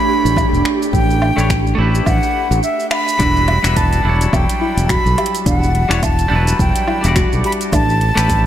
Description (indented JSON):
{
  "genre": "sunset chillout",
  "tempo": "106 BPM",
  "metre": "4/4",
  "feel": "swing 58% on 16ths",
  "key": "E dorian",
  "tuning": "A4 = 441 Hz",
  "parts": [
    { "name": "breathy concert flute", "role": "melody", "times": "0.0-8.5 s", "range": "E5 to B5", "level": "-19 LUFS", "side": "equal", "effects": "tape echo, shimmer reverb" },
    { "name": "clean electric guitar", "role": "accompaniment", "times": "0.0-8.5 s", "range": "F#3 to D5", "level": "-22 LUFS", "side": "equal", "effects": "auto-pan, tape echo, shimmer reverb" },
    { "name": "airy breathy pad", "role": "sustained chords", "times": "0.0-3.2 s", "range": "A3 to G4", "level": "-22 LUFS", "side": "right 3 dB", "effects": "chorus, shimmer reverb" },
    { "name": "twinkling granular texture", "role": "texture", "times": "0.0-8.5 s", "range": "G4 to A5", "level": "-32 LUFS", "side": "right 1 dB", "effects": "none" },
    { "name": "fingered electric bass", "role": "bass", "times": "0.3-8.5 s", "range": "E1 to B1", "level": "-16 LUFS", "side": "equal", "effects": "none" },
    { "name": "deep house drum kit", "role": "drums", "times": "0.3-8.4 s", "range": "finger snaps, hi-hat, shaker, woodblock", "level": "-23 LUFS", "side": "right 1 dB", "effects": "overdrive, small room ambience" },
    { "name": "electronic kick drum", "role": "drums", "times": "0.4-8.4 s", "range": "none", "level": "-20 LUFS", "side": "equal", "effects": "overdrive, small room ambience" },
    { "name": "soft round pluck", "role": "arpeggios", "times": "3.2-8.0 s", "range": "D4 to G4", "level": "-24 LUFS", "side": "left 1 dB", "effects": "chorus, tape echo, shimmer reverb" }
  ],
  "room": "light reverb, digital ambience",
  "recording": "none",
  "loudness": "-13 LUFS",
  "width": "side -11 dB against mid",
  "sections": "0.0-3.2 A section; 3.2-8.5 B section",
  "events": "band accent 2.9",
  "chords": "0.0 A9sus4; 3.2 Em9; 7.7 A9sus4"
}